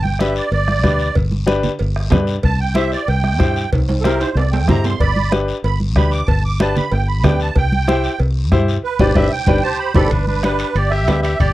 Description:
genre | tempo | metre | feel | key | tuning
latin, cumbia | 188 BPM | 4/4 | straight | G major | A4 = 440 Hz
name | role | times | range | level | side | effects
musette accordion | melody | 0.0-11.5 s | A4 to D6 | -21 LUFS | right 5 dB | none
fingered electric bass | bass | 0.0-11.5 s | G1 to G2 | -18 LUFS | equal | none
congas | percussion | 0.0-11.5 s | none | -21 LUFS | right 2 dB | none
bright upright piano | accompaniment | 0.2-11.3 s | D4 to C5 | -19 LUFS | left 3 dB | none
bombo | percussion | 0.2-11.5 s | none | -20 LUFS | left 1 dB | none
guiro | percussion | 0.2-11.5 s | none | -34 LUFS | left 7 dB | none
cowbell and timbales | percussion | 0.5-11.5 s | none | -26 LUFS | right 5 dB | none
clear trumpet | second line | 9.6-11.5 s | C4 to G4 | -26 LUFS | left 4 dB | none
room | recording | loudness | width
little or no reverb | dry, close 1970s-style studio recording | -14 LUFS | side -16 dB against mid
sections
0.0-10.1 A section; 10.1-11.5 B section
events
accordion solo 0.0-10.1; drum fill 3.7-5.0, 9.3-10.1; band accent 8.8-10.1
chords
0.0 G; 2.4 C; 5.0 G; 7.6 C; 8.8 G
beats
0.20 0.52 0.84 | 1.16 1.48 1.80 2.12 | 2.44 2.76 3.08 3.40 | 3.72 4.04 4.36 4.68 | 5.00 5.32 5.64 5.96 | 6.28 6.60 6.92 7.24 | 7.56 7.88 8.20 8.52 | 8.84 9.16 9.48 9.80 | 10.12 10.44 10.76 11.08 | 11.40

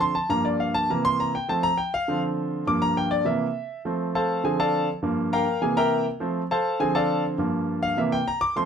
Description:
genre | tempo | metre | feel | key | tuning
latin | 203 BPM | 4/4 | straight | F major | A4 = 440 Hz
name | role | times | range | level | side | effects
clear concert grand piano | solo | 0.0-8.7 s | G2 to D6 | -22 LUFS | equal | none
room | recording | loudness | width
light reverb | close, detailed microphones | -22 LUFS | side -7 dB against mid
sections
0.0-8.7 A section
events
grand piano solo 0.0-8.7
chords
0.3 Gm7; 0.9 C7; 1.5 F; 2.1 Dm7; 2.7 Gm7; 3.3 C7; 3.9 F; 4.4 Dm7; 5.0 Gm7; 5.6 C7; 6.2 F; 6.8 Dm7; 7.4 Gm7; 8.0 C7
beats
0.01 | 0.31 0.60 0.90 1.19 | 1.49 1.78 2.08 2.37 | 2.67 2.96 3.26 3.56 | 3.85 4.15 4.44 4.74 | 5.03 5.33 5.62 5.92 | 6.22 6.51 6.81 7.10 | 7.40 7.69 7.99 8.28 | 8.58

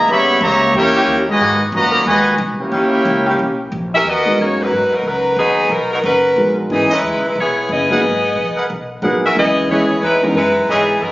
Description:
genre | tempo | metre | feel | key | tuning
jazz, big band swing | 181 BPM | 4/4 | swing 62% on 8ths | G# minor | A4 = 438 Hz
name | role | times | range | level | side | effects
clear trumpet section | melody | 0.0-3.7 s | E4 to B5 | -14 LUFS | equal | none
clear trombone section | second line | 0.0-3.7 s | A#2 to G4 | -18 LUFS | equal | none
upright bass | bass | 0.0-11.1 s | F#1 to G#2 | -26 LUFS | equal | none
warm saxophone section | sustained chords | 1.0-3.3 s | E3 to A#4 | -22 LUFS | left 1 dB | none
bright saxophone section | melody | 3.9-11.1 s | E3 to E5 | -14 LUFS | equal | none
warm concert grand piano | accompaniment | 4.2-10.3 s | E3 to D#5 | -19 LUFS | equal | none
warm trumpet section | stabs | 6.9-10.8 s | E4 to F#5 | -22 LUFS | equal | none
room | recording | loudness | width
moderate scoring stage reverb, RT60 1.5 s | recorded on a phone in the room, studio ambience, compression, nothing above 7.5 kHz | -13 LUFS | side -18 dB against mid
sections
0.0-4.0 A section; 4.0-11.1 B section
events
none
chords
0.1 D#7b9; 1.4 G#m9; 2.7 D#7b9; 4.0 G#m9; 6.7 C#m9; 8.0 G#m9; 9.4 C#m9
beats
| 0.07 0.41 0.73 1.06 | 1.40 1.73 2.06 2.39 | 2.72 3.05 3.38 3.71 | 4.04 4.37 4.70 5.04 | 5.37 5.70 6.03 6.37 | 6.70 7.03 7.36 7.70 | 8.03 8.36 8.69 9.03 | 9.36 9.69 10.02 10.36 | 10.69 11.02

